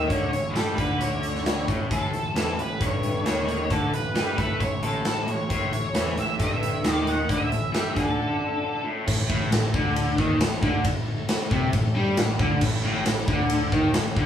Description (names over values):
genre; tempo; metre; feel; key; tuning
classic rock; 134 BPM; 4/4; straight; A major; A4 = 438 Hz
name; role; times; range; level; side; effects
octave-fuzz lead guitar; melody; 0.0-8.8 s; A4 to F#5; -29 LUFS; equal; distortion
fingerpicked twelve-string acoustic guitar; accompaniment; 0.0-9.1 s; A2 to A4; -38 LUFS; right 4 dB; none
raw garage guitar; riff; 0.0-14.3 s; G2 to A3; -28 LUFS; left 1 dB; overdrive
growling picked electric bass; bass; 0.0-14.3 s; G1 to A2; -31 LUFS; equal; overdrive
big rock drum kit; drums; 0.1-14.3 s; crash cymbal, hi-hat, kick drum, ride cymbal, snare drum; -26 LUFS; equal; none
bright tonewheel organ; sustained chords; 9.1-14.3 s; A3 to A4; -39 LUFS; equal; none
crunchy overdriven guitar; riff; 9.1-14.3 s; A2 to G3; -28 LUFS; equal; none
room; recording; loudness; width
moderate large studio reverb, RT60 0.9 s; band playing live in one room, small room ambience; -22 LUFS; side -9 dB against mid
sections
0.0-9.1 A section; 9.1-14.3 B section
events
break 8.2-9.1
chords
0.0 A